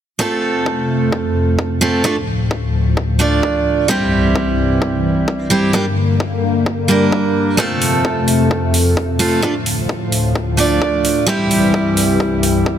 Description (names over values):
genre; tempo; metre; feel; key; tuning
EDM, festival progressive house; 130 BPM; 4/4; straight; unclear; A4 = 440 Hz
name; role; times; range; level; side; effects
picked steel-string acoustic guitar; accompaniment; 0.2-12.8 s; G3 to D5; -16 LUFS; right 2 dB; sidechain pumping, tape echo
lush unison pad; sustained chords; 0.2-12.8 s; C2 to Bb3; -18 LUFS; left 2 dB; chorus, sidechain pumping
electronic kick drum; drums; 0.2-12.8 s; none; -22 LUFS; left 1 dB; overdrive, high-pass filter on kick, small room ambience
electronic hi-hat; drums; 7.8-12.5 s; none; -21 LUFS; right 2 dB; overdrive, small room ambience
room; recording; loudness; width
light reverb, digital ambience; none; -13 LUFS; side -9 dB against mid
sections
0.2-12.8 A section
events
filter sweep on analog synth pad 0.2-12.8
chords
0.2 F; 2.0 Dm; 3.9 C; 5.7 Gm; 7.6 F; 9.4 Dm; 11.3 C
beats
| 0.20 0.66 1.12 1.59 | 2.05 2.51 2.97 3.43 | 3.89 4.36 4.82 5.28 | 5.74 6.20 6.66 7.12 | 7.59 8.05 8.51 8.97 | 9.43 9.89 10.36 10.82 | 11.28 11.74 12.20 12.66